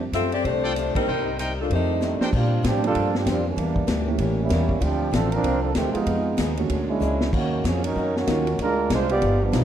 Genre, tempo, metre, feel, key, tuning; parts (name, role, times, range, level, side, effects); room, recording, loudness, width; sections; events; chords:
jazz, big band swing; 192 BPM; 4/4; swing 61% on 8ths; A4 = 440 Hz
picked swing-style acoustic guitar; accompaniment; 0.0-9.6 s; F2 to Ab4; -33 LUFS; left 5 dB
upright bass; bass; 0.0-9.6 s; G1 to Bb2; -25 LUFS; equal
clear saxophone section; melody; 0.1-2.2 s; F3+20c to E5; -24 LUFS; left 3 dB
swinging big-band drum kit; drums; 0.1-9.6 s; crash cymbal, hi-hat, kick drum, ride cymbal, snare drum; -29 LUFS; left 1 dB
bright trumpet section; stabs; 0.6-2.3 s; D4 to G5; -32 LUFS; right 1 dB
warm baby grand piano; accompaniment; 0.9-9.6 s; D3 to G4; -30 LUFS; right 5 dB
clear trombone section; second line; 1.9-9.6 s; Eb3 to D5; -24 LUFS; right 3 dB
moderate recital hall reverb, RT60 1.5 s; -20 LUFS; side -10 dB against mid
0.0-2.3 A section; 2.3-9.6 B section
band accent 0.9; drum fill 2.0-2.3, 7.0-7.3; trombone section solo 2.3-9.6
0.0 F69; 1.1 Cm7; 1.7 F13; 2.3 Bb69; 3.6 Em7b5; 4.2 A7b9; 4.8 Dm7; 6.1 Fm7b5; 6.7 Bb7alt; 7.3 Ebm7; 8.6 Dm7b5